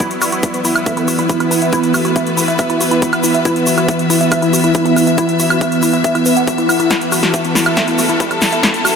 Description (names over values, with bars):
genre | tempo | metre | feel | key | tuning
psychedelic trance | 139 BPM | 4/4 | straight | unclear | A4 = 445 Hz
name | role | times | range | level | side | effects
evolving wavetable pad | sustained chords | 0.0-9.0 s | E3 to B3 | -17 LUFS | right 1 dB | chorus, built-in reverb, sidechain pumping
woody wave-folded pluck | riff | 0.0-8.9 s | E4 to F#5 | -17 LUFS | equal | chorus, auto-pan, sidechain pumping, diffuse ambient delay
big-room dance drum kit | drums | 0.0-8.9 s | hi-hat, snare drum, woodblock | -19 LUFS | equal | none
electronic kick drum | drums | 0.0-8.7 s | none | -18 LUFS | left 1 dB | high-pass filter on kick
egg shaker | percussion | 0.0-8.9 s | none | -24 LUFS | left 3 dB | none
rich symphonic string section | texture | 0.0-9.0 s | B3 to E5 | -20 LUFS | left 2 dB | sidechain pumping
formant-sweep wobble bass | second line | 0.5-2.4, 7.4-8.4 s | G3 to B3 | -31 LUFS | left 1 dB | none
room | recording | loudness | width
wet huge ambient reverb, RT60 6.5 s | dreamy mix soaked in reverb | -12 LUFS | side -6 dB against mid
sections
0.0-9.0 A section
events
build-up 0.0-9.0; drum fill 6.9-9.0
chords
0.0 E5